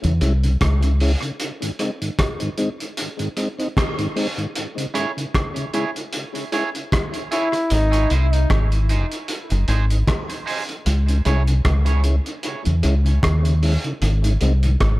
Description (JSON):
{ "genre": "dub reggae", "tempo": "76 BPM", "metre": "4/4", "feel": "swing 56% on 16ths", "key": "C# harmonic minor", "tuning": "A4 = 440 Hz", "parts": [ { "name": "mellow tonewheel organ", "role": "accompaniment", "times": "0.0-14.7 s", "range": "G#2 to E4", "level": "-27 LUFS", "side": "left 1 dB", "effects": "slow rotary speaker, high-pass filter, tape echo" }, { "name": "deep dub fingered electric bass", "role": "bass", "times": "0.0-1.1, 7.7-15.0 s", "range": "F#1 to E2", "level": "-17 LUFS", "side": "equal", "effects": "none" }, { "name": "cloth-damped thuddy drum kit", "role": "drums", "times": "0.0-15.0 s", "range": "hi-hat, kick drum, rim click", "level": "-24 LUFS", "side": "equal", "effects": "none" }, { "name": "electric guitar at the edge of break-up", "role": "accompaniment", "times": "4.9-11.4 s", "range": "D#4 to C#5", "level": "-29 LUFS", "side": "right 5 dB", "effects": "high-pass filter, tape echo" }, { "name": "bright trombone", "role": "melody", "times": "7.3-8.1 s", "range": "D#4 to E4", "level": "-24 LUFS", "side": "equal", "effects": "tape echo" } ], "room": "small room ambience", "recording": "echo-heavy mix", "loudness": "-18 LUFS", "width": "side -18 dB against mid", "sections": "0.0-15.0 A section", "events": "break 0.0-7.7; filter sweep 4.6-10.9", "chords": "0.0 C#m; 1.4 G#; 4.6 C#m; 7.7 G#; 10.9 C#m; 14.0 G#" }